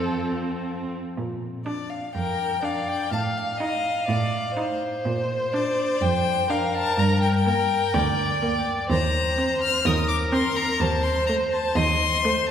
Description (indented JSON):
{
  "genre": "quick classical-period movement for string quartet",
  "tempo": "124 BPM",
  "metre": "4/4",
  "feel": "straight",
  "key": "Bb major",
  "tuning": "A4 = 441 Hz",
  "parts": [
    { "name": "rich violin", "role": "melody", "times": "0.0-12.5 s", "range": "F4 to F6", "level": "-26 LUFS", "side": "left 4 dB", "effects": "none" },
    { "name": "rich violin", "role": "second line", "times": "0.0-12.5 s", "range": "A4 to F5", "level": "-26 LUFS", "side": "equal", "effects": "none" },
    { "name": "rich viola", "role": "accompaniment", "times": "0.0-12.5 s", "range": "A3 to Eb4", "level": "-31 LUFS", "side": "right 1 dB", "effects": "none" },
    { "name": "warm cello", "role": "bass", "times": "0.0-12.1 s", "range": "D2 to Bb2", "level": "-27 LUFS", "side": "right 2 dB", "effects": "none" }
  ],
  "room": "wet church reverb, RT60 3.0 s",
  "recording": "recorded in a church or concert hall",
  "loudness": "-21 LUFS",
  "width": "side -9 dB against mid",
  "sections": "0.0-1.2 A section; 1.2-12.5 B section",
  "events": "none",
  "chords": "0.0 F; 1.2 Bb; 3.1 F7/A; 5.0 Bb; 7.0 Gm; 8.9 Cm7/Eb; 10.8 Adim/Eb"
}